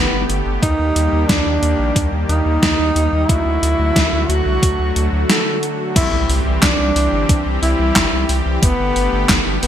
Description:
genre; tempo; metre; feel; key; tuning
synthwave; 90 BPM; 4/4; straight; unclear; A4 = 441 Hz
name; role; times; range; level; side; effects
breathy tenor saxophone; melody; 0.0-9.7 s; B3 to A4; -20 LUFS; equal; ping-pong delay
soft supersaw; sustained chords; 0.0-9.7 s; D3 to G4; -23 LUFS; equal; sidechain pumping
round analog bass; bass; 0.0-9.7 s; G1 to Eb2; -19 LUFS; equal; none
gated 80s digital drum machine; drums; 0.3-9.7 s; crash cymbal, handclaps, hi-hat, snare drum; -19 LUFS; equal; gated reverb, gated reverb snare, overdrive
electronic kick drum; drums; 0.6-9.4 s; none; -18 LUFS; equal; overdrive
impact; sound effects; 6.0-8.6 s; none; -28 LUFS; equal; none
room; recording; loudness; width
light reverb; bright 1980s-style digital production; -14 LUFS; side -10 dB against mid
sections
0.0-6.0 A section; 6.0-9.7 B section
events
impact 6.0-8.6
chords
0.0 Gadd9; 0.6 Eb; 3.3 D; 6.0 C; 8.6 Gadd9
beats
| 0.63 1.29 1.96 2.63 | 3.29 3.96 4.63 5.29 | 5.96 6.63 7.29 7.96 | 8.63 9.29

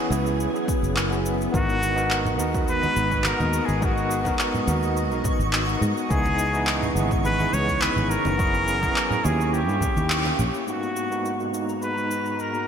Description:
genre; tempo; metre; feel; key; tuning
sunset chillout; 105 BPM; 4/4; straight; G# minor; A4 = 440 Hz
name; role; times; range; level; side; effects
overdriven tine electric piano; accompaniment; 0.0-12.7 s; G#2 to B4; -28 LUFS; moving between left 4 dB and right 4 dB; medium tremolo, auto-pan, digital delay
soft string machine; sustained chords; 0.0-12.7 s; G#2 to D#5; -30 LUFS; equal; ensemble chorus
fingered electric bass; bass; 0.1-10.5 s; F#1 to G#2; -26 LUFS; equal; none
electronic cabasa and handclaps; drums; 0.1-12.7 s; none; -29 LUFS; equal; gated reverb
electronic kick drum; drums; 0.7-9.9 s; none; -27 LUFS; equal; overdrive
trumpet with straight mute; melody; 1.5-12.7 s; F#4 to C#5; -27 LUFS; equal; digital delay
twinkling granular texture; texture; 2.8-12.7 s; A#5 to C#6; -36 LUFS; right 3 dB; built-in reverb
congas; percussion; 1.8-10.5 s; none; -33 LUFS; right 2 dB; none
room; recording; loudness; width
moderate lush hall reverb, RT60 2.4 s; bright 1980s-style digital production; -21 LUFS; side -8 dB against mid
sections
0.0-10.7 A section; 10.7-12.7 B section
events
kick drops out 10.1-10.7; band accent 10.1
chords
0.0 F#9sus4; 1.5 G#m7; 6.1 C#m9; 8.4 F#9sus4; 9.5 D#7b9; 10.7 G#m7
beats
0.39 0.96 | 1.53 2.10 2.68 3.25 | 3.82 4.39 4.96 5.53 | 6.11 6.68 7.25 7.82 | 8.39 8.96 9.53 10.11 | 10.68 11.25 11.82 12.39

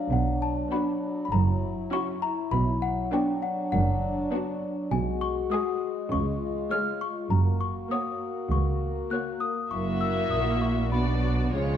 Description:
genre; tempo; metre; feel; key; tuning
cinematic, playful, whimsical film cue; 100 BPM; 4/4; straight; F# major from 4.9 s; A4 = 440 Hz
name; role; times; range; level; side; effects
small celesta; melody; 0.0-11.8 s; F5 to F#6; -32 LUFS; left 5 dB; none
mellow French horn section; sustained chords; 0.0-11.8 s; E#3 to F#4; -31 LUFS; left 3 dB; none
muted chamber cello section; bass; 0.1-11.8 s; C#2 to C#3; -30 LUFS; right 2 dB; none
muted studio double bass section; bass; 0.1-11.8 s; F#1 to C#2; -29 LUFS; right 2 dB; none
muted chamber violin section; melody; 0.7-11.8 s; F#4 to E5; -35 LUFS; left 4 dB; none
muted studio violin section; second line; 0.7-11.8 s; D4 to F#4; -34 LUFS; equal; none
muted studio viola section; accompaniment; 0.7-11.8 s; G#3 to C#4; -34 LUFS; right 3 dB; none
room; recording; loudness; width
moderate scoring stage reverb, RT60 1.6 s; dark, warm production; -25 LUFS; side -9 dB against mid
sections
0.0-11.8 A section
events
none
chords
0.1 Bm; 1.3 F#7; 2.5 Bm; 4.9 G#m7/B; 6.1 C#; 7.3 F#; 9.7 F#7; 10.9 Bm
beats
| 0.12 0.72 1.32 1.92 | 2.52 3.12 3.72 4.32 | 4.92 5.52 6.12 6.71 | 7.31 7.91 8.51 9.11 | 9.71 10.32 10.92 11.53

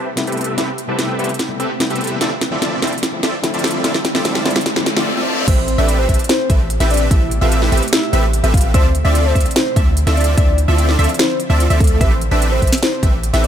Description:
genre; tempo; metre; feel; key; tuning
future bass; 147 BPM; 4/4; half-time; A minor; A4 = 440 Hz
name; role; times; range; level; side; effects
shimmering ambient pad; sustained chords; 0.1-13.5 s; B2 to G4; -30 LUFS; right 2 dB; chorus, built-in reverb, sidechain pumping
supersaw chords; riff; 0.0-13.5 s; C4 to E5; -21 LUFS; right 1 dB; analog chorus, sidechain pumping, low-pass filter
riser and reverse cymbal; sound effects; 2.5-5.5 s; none; -29 LUFS; equal; none
overdriven tine electric piano; accompaniment; 0.2-5.0 s; C3 to E4; -26 LUFS; left 4 dB; fast tremolo, sidechain pumping, ping-pong delay
trap drum kit; drums; 0.2-13.5 s; crash cymbal, hi-hat, snare drum; -20 LUFS; equal; studio ambience
soft octave-layered synth lead; melody; 5.5-13.5 s; A4 to F5; -22 LUFS; left 1 dB; chorus, phaser, sidechain pumping, digital delay
wide unison pluck; arpeggios; 5.5-13.5 s; E5; -26 LUFS; equal; cassette tape, sidechain pumping
warm 808-style bass; bass; 5.5-13.5 s; A1 to D2; -16 LUFS; equal; sidechain pumping
electronic kick drum; drums; 5.5-13.1 s; none; -15 LUFS; equal; studio ambience
room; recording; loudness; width
light reverb, digital ambience; none; -13 LUFS; side -9 dB against mid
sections
0.0-5.5 A section; 5.5-13.5 B section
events
build-up 0.0-5.5; drum fill 0.0-5.1; riser 2.5-5.1; reverse cymbal 4.7-5.5; drop 5.5-13.5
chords
0.0 Am9; 2.2 Dm9; 5.5 Am9; 8.7 Dm9; 12.0 Am9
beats
0.17 | 0.58 0.99 1.40 1.80 | 2.21 2.62 3.03 3.44 | 3.85 4.25 4.66 5.07 | 5.48 5.89 6.29 6.70 | 7.11 7.52 7.93 8.34 | 8.74 9.15 9.56 9.97 | 10.38 10.78 11.19 11.60 | 12.01 12.42 12.82 13.23

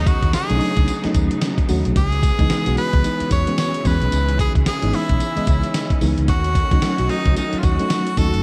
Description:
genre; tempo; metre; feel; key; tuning
R&B, new jack swing; 111 BPM; 4/4; swing 60% on 16ths; unclear; A4 = 440 Hz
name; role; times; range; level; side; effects
edgy tenor saxophone; melody; 0.0-8.4 s; D#4 to C#5; -27 LUFS; equal; slapback echo
FM electric piano with tremolo; accompaniment; 0.0-8.4 s; E3 to D#5; -26 LUFS; equal; none
bright studio string section; sustained chords; 0.0-8.4 s; C#3 to F#4; -32 LUFS; equal; none
vintage muted fingered electric bass; bass; 0.0-8.4 s; F#1 to E2; -23 LUFS; equal; none
dusty soul sampler-style drum kit; drums; 0.1-8.4 s; hi-hat, kick drum, snare drum, tambourine; -23 LUFS; equal; none
room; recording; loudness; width
light reverb, digital ambience; none; -19 LUFS; mono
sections
0.0-8.4 A section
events
none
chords
0.0 D#m7b5; 2.0 C#m7; 6.3 D#m7b5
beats
0.34 0.88 1.42 | 1.96 2.50 3.04 3.58 | 4.12 4.66 5.20 5.74 | 6.28 6.82 7.36 7.91

